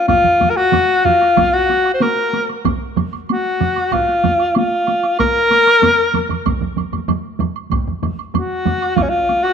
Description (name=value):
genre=japanese traditional, taiko drum ensemble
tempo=95 BPM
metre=4/4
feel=straight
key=F miyako bushi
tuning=A4 = 440 Hz
part: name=clear alto saxophone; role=melody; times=0.0-9.5 s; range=Db4 to C5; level=-14 LUFS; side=left 1 dB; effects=none
part: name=solo taiko drums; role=percussion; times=0.1-9.1 s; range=none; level=-26 LUFS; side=left 4 dB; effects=none
part: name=taiko ensemble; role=percussion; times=0.1-9.4 s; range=none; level=-24 LUFS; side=left 1 dB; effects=none
part: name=taiko ensemble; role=percussion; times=0.1-9.1 s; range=none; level=-22 LUFS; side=right 14 dB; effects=none
part: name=taiko ensemble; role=percussion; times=0.1-9.1 s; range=none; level=-25 LUFS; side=right 3 dB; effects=none
part: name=woodblock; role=percussion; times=0.1-9.5 s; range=none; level=-28 LUFS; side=right 14 dB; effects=none
room=moderate echo chamber reverb, RT60 2.0 s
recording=1960s-style stereo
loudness=-14 LUFS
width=side -7 dB against mid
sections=0.0-9.5 A section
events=none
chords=none